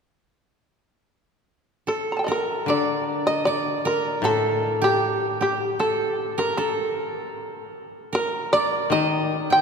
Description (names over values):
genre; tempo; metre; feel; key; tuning
japanese traditional; 77 BPM; 4/4; rubato; D miyako bushi; A4 = 439 Hz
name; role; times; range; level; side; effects
shamisen; melody; 1.9-9.6 s; G4 to Bb5; -24 LUFS; equal; none
koto; second line; 1.9-9.6 s; G4 to G5; -25 LUFS; right 2 dB; none
koto; accompaniment; 2.7-9.6 s; A2 to Eb3; -27 LUFS; left 4 dB; none
room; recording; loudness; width
wet cathedral reverb, RT60 4.5 s; recorded in a church or concert hall; -21 LUFS; side -6 dB against mid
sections
1.0-9.6 A section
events
none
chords
none